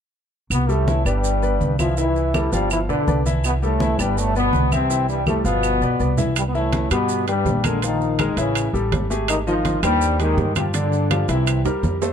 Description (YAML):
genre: latin, salsa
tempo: 164 BPM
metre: 4/4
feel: straight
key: C major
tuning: A4 = 440 Hz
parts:
  - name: bright trombone section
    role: melody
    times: 0.5-11.6 s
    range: G2 to F4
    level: -22 LUFS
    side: left 2 dB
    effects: none
  - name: upright bass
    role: bass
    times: 0.5-12.1 s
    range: G1 to G2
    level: -22 LUFS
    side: right 1 dB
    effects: none
  - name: claves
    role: percussion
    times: 0.5-11.7 s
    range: none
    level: -29 LUFS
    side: right 4 dB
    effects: none
  - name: congas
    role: percussion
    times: 0.5-12.0 s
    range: none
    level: -28 LUFS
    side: equal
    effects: none
  - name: maracas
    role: percussion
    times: 0.5-12.1 s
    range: none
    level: -34 LUFS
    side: right 9 dB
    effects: none
  - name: clear baby grand piano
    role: accompaniment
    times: 0.7-12.1 s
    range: D3 to F5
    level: -25 LUFS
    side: left 2 dB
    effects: none
  - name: timbales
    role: percussion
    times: 6.4-12.1 s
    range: none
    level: -28 LUFS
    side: right 9 dB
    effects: none
room: light reverb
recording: dark, warm production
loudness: -18 LUFS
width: side -8 dB against mid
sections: 0.5-6.4 A section; 6.4-12.1 B section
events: drum fill 5.3-6.4, 11.7-12.1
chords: 0.5 C6; 1.2 G6; 2.0 C6; 2.7 G6; 3.4 G69; 4.9 C6; 5.6 G6; 6.4 Cmaj9; 7.8 Bbm7; 8.6 A7; 9.3 Abmaj7; 10.7 G5; 11.5 C7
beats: | 0.51 0.88 1.25 1.61 | 1.98 2.34 2.71 3.08 | 3.44 3.81 4.17 4.54 | 4.91 5.27 5.64 6.00 | 6.37 6.73 7.10 7.46 | 7.83 8.19 8.56 8.92 | 9.29 9.65 10.02 10.38 | 10.75 11.11 11.47 11.84